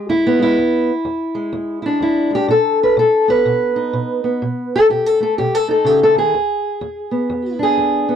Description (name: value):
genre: acoustic country blues, solo or duo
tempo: 125 BPM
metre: 4/4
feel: swing 60% on 8ths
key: unclear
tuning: A4 = 439 Hz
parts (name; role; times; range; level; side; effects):
- fingerpicked steel-string acoustic guitar; solo; 0.0-8.2 s; E2 to B4; -14 LUFS; equal; none
room: little or no reverb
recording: dry, close 1970s-style studio recording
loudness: -14 LUFS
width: side -8 dB against mid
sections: 0.0-8.2 A section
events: none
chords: 0.0 E7; 2.5 B7; 6.3 E7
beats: 0.09 | 0.57 1.05 1.53 2.01 | 2.49 2.97 3.45 3.93 | 4.41 4.89 5.37 5.85 | 6.33 6.81 7.29 7.76